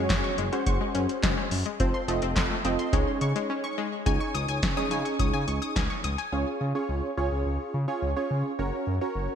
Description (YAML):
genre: synth-pop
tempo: 106 BPM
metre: 4/4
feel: straight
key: Db major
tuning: A4 = 440 Hz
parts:
  - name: warm analog keys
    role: accompaniment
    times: 0.0-9.3 s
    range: C4 to Eb5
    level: -30 LUFS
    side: right 2 dB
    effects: chorus
  - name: analog pluck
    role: arpeggios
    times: 0.0-6.3 s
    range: Ab3 to Eb6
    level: -32 LUFS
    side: left 6 dB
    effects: chorus, digital delay
  - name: smooth synth bass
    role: bass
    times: 0.0-9.3 s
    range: F1 to Db3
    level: -30 LUFS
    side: equal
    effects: none
  - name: electro analog drum machine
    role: drums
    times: 0.1-6.3 s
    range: handclaps, hi-hat, kick drum, snare drum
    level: -28 LUFS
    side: equal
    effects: gated reverb
room: moderate lush hall reverb, RT60 2.3 s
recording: bright 1980s-style digital production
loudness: -25 LUFS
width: side -8 dB against mid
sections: 0.0-4.1 A section; 4.1-6.3 B section; 6.3-9.3 C section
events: break 3.5-4.1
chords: 0.0 Gbsus2; 1.8 F; 2.9 Dbsus2; 6.3 Db; 8.6 Gb